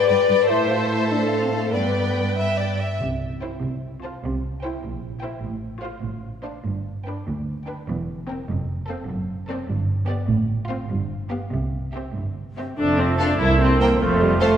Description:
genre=quick classical-period movement for symphony orchestra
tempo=93-101 BPM (dotted quarters)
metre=6/8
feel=rubato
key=C major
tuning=A4 = 441 Hz
part: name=rich studio violin section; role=melody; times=0.0-14.5 s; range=D5 to A5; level=-35 LUFS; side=left 1 dB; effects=none
part: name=rich studio violin section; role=second line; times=0.0-14.5 s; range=F4 to E5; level=-29 LUFS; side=equal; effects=none
part: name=clear studio viola section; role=accompaniment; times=0.0-14.6 s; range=G3 to D5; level=-25 LUFS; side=equal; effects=none
part: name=mellow French horn section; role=sustained chords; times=0.0-2.4, 12.8-14.6 s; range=A3 to B4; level=-23 LUFS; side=left 5 dB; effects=none
part: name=rich studio cello section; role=bass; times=0.1-14.5 s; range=C2 to C3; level=-26 LUFS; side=right 2 dB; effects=none
part: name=rich studio double bass section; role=bass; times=3.0-14.5 s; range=E1 to D2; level=-28 LUFS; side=right 2 dB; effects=none
part: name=timpani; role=percussion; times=3.0-3.6 s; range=C3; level=-36 LUFS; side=right 2 dB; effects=none
part: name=concert flute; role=second line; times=12.8-14.6 s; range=C5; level=-32 LUFS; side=equal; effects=none
part: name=warm cor anglais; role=second line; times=12.8-14.6 s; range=F4 to A4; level=-28 LUFS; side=right 4 dB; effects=none
part: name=mellow bassoon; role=accompaniment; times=12.8-14.6 s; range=A3 to Bb3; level=-27 LUFS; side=right 3 dB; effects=none
room=wet concert hall reverb, RT60 2.1 s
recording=recorded in a church or concert hall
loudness=-21 LUFS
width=side -8 dB against mid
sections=0.0-3.0 A section; 3.0-12.8 B section; 12.8-14.6 A section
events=none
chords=0.5 Am; 1.7 G; 3.0 C; 3.6 F/C; 4.2 C; 4.8 C7/Bb; 5.4 F/A; 6.0 Dm7/A; 6.6 G; 7.9 C7/E; 8.5 F; 9.1 D7/F#; 9.7 G; 10.3 F/A; 10.9 G7; 11.5 C; 12.8 F; 13.4 C5; 14.0 F

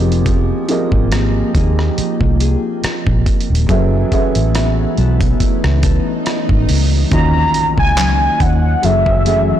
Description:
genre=contemporary R&B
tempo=70 BPM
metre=4/4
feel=swing 54% on 16ths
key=unclear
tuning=A4 = 437 Hz
part: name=felt-muted upright piano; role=accompaniment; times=0.0-9.6 s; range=Eb3 to Fb5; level=-20 LUFS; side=right 3 dB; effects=none
part: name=glassy FM pad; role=sustained chords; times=0.2-9.6 s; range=Eb3 to G5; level=-24 LUFS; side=equal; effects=ensemble chorus, built-in reverb
part: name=nylon-string guitar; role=arpeggios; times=0.0-9.6 s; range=Eb3 to A4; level=-23 LUFS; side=left 7 dB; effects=digital delay
part: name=vintage muted fingered electric bass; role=bass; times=0.0-9.5 s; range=Eb1 to Eb2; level=-15 LUFS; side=equal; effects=none
part: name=downlifter, swell and impact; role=sound effects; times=5.0-9.6 s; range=none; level=-29 LUFS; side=right 1 dB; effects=none
part: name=dusty soul sampler-style drum kit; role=drums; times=0.1-9.5 s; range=handclaps, hi-hat, kick drum, rim click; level=-18 LUFS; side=equal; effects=soft clipping on snare
part: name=warm velvety synth lead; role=melody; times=7.1-9.6 s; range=Fb5 to Bb5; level=-16 LUFS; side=left 1 dB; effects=chorus, digital delay
room=light reverb, digital ambience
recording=blown-out, overdriven recording, overdrive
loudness=-12 LUFS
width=side -11 dB against mid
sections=0.0-7.1 A section; 7.1-9.6 B section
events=swell 5.0-7.1; impact 7.1-9.6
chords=0.0 Fm11; 3.7 Gbm11; 7.1 Ebm9; 8.8 Gbm9

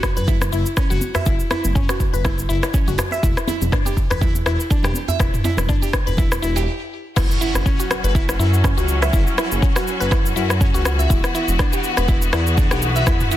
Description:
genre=afro house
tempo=122 BPM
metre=4/4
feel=swing 55% on 16ths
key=unclear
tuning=A4 = 441 Hz
part: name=deep house drum kit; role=drums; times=0.0-13.4 s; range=crash cymbal, rim click, shaker, toms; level=-24 LUFS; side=left 1 dB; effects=soft clipping on snare
part: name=electronic kick drum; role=drums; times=0.0-13.2 s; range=none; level=-19 LUFS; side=equal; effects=none
part: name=djembe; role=percussion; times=0.0-6.6 s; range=none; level=-29 LUFS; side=right 2 dB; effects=none
part: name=mallet-like synth pluck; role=arpeggios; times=0.2-13.4 s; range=C#4 to E5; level=-24 LUFS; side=equal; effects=chorus, sidechain pumping, ping-pong delay
part: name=smooth synth bass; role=bass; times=0.2-13.2 s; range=E1 to F#2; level=-21 LUFS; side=equal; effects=tube saturation, sidechain pumping
part: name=congas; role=percussion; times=0.3-6.4 s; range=none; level=-30 LUFS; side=left 2 dB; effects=none
part: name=bright studio string section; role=sustained chords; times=7.2-13.4 s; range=E3 to F#4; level=-25 LUFS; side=left 2 dB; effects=sidechain pumping
part: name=impact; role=sound effects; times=7.2-9.1 s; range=none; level=-27 LUFS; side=equal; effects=none
room=light reverb, digital ambience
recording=dense, heavily limited modern master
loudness=-16 LUFS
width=side -13 dB against mid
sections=0.0-7.2 A section; 7.2-13.4 B section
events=stop 6.7-7.2; drop 7.2-13.4; impact 7.2-9.1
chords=0.0 F#5; 3.2 N.C.; 7.2 F#5; 11.1 Esus2

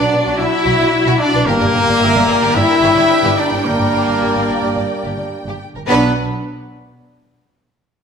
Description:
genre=cinematic, epic orchestral film score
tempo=109 BPM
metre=4/4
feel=straight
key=B harmonic minor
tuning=A4 = 440 Hz
part: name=rich symphonic violin section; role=melody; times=0.0-6.2 s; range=Bb4 to E5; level=-25 LUFS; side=left 3 dB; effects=none
part: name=warm symphonic violin section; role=second line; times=0.0-6.2 s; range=F#4 to G5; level=-24 LUFS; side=left 3 dB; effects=none
part: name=warm symphonic viola section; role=accompaniment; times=0.0-6.2 s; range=D4 to E5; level=-24 LUFS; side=right 2 dB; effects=none
part: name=clear French horn section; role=sustained chords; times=0.0-6.1 s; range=Bb3 to E4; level=-17 LUFS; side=left 4 dB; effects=none
part: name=warm trombone section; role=sustained chords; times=0.0-6.1 s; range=F#3 to D4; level=-24 LUFS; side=right 3 dB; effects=none
part: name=bright trumpet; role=stabs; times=0.0-6.1 s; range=Bb4 to E5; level=-20 LUFS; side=right 3 dB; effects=none
part: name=rich symphonic cello section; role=bass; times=0.0-6.2 s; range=Bb3 to E4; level=-22 LUFS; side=right 2 dB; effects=none
part: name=warm symphonic double bass section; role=bass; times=0.0-6.2 s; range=G1 to B1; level=-22 LUFS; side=right 3 dB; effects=none
room=wet recital hall reverb, RT60 1.4 s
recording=none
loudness=-12 LUFS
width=side -6 dB against mid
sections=0.0-5.9 A section; 5.9-8.0 B section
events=none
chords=0.0 Bm; 1.5 Gm; 5.9 Bm

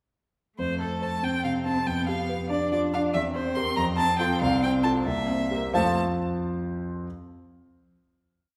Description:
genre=quick classical-period movement for piano trio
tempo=94 BPM (dotted quarters)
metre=6/8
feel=straight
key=F major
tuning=A4 = 441 Hz
part: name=clear violin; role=melody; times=0.6-6.0 s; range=A4 to C6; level=-31 LUFS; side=equal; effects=none
part: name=warm cello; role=second line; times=0.6-6.0 s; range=A3 to D4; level=-33 LUFS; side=equal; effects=none
part: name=warm concert grand piano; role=accompaniment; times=0.6-7.1 s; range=C2 to F5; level=-29 LUFS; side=equal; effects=none
room=wet recital hall reverb, RT60 1.5 s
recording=recorded in a church or concert hall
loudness=-26 LUFS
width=mono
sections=0.6-5.7 theme; 5.7-7.0 final chord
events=none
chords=0.6 F; 1.9 G7/F; 3.1 C7/E; 3.8 F; 4.4 F/C; 5.1 C7; 5.7 F

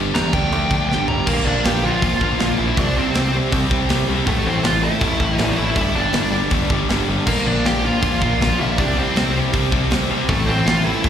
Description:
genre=punk rock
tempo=160 BPM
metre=4/4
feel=straight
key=C major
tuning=A4 = 440 Hz
part: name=overdriven electric guitar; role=riff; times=0.0-11.1 s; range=G2 to D4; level=-26 LUFS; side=equal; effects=slapback echo
part: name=overdriven semi-hollow guitar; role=riff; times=0.0-11.1 s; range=G2 to D4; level=-25 LUFS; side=right 9 dB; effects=slapback echo
part: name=sludgy distorted guitar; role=riff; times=0.0-11.1 s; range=G2 to F4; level=-22 LUFS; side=left 8 dB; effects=overdrive
part: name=growling picked electric bass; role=bass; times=0.0-11.1 s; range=G1 to D3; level=-24 LUFS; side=equal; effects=overdrive
part: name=high-gain lead guitar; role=melody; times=0.1-11.1 s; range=A3 to Bb5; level=-22 LUFS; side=right 1 dB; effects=distortion, slapback echo
part: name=tight metal drum kit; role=drums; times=0.1-11.1 s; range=crash cymbal, hi-hat, kick drum, snare drum, toms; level=-23 LUFS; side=equal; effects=none
room=little or no reverb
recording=live gig heard through the venue's PA, recital hall reverb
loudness=-16 LUFS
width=side -9 dB against mid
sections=0.0-1.3 A section; 1.3-11.1 B section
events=lead electric guitar solo 0.0-1.3; drum fill 0.9-1.3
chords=0.3 Dm; 0.9 G; 1.3 Bb; 2.8 C; 4.3 Am; 5.8 G; 7.3 Bb; 8.8 C; 10.3 Am

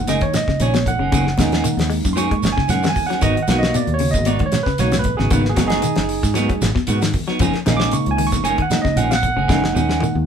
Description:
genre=afrobeat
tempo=115 BPM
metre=4/4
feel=swing 53% on 16ths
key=unclear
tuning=A4 = 440 Hz
part: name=barky tine electric piano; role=accompaniment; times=0.0-10.2 s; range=G#3 to D6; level=-21 LUFS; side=right 4 dB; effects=none
part: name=clean electric guitar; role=arpeggios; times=0.0-10.2 s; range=G#2 to G#3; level=-24 LUFS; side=left 5 dB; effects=none
part: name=fingered electric bass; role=bass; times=0.0-10.3 s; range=F#1 to G#2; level=-22 LUFS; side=equal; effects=none
part: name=semi-hollow electric guitar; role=stabs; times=0.1-10.1 s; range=D#3 to G#4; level=-24 LUFS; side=right 2 dB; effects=none
part: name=damped 70s drum kit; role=drums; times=0.1-10.1 s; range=hi-hat, kick drum, snare drum, toms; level=-22 LUFS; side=left 1 dB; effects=none
part: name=congas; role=percussion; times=0.1-9.9 s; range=none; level=-28 LUFS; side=right 4 dB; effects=none
part: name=shekere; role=percussion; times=0.1-10.2 s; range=none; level=-27 LUFS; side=right 4 dB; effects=none
room=moderate studio reverb, RT60 0.5 s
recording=band playing live in one room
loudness=-16 LUFS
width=side -8 dB against mid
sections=0.0-10.3 A section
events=tine electric piano solo 0.0-10.3; drum fill 9.5-10.3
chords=0.0 F#69; 3.2 G#m7; 7.4 F#69

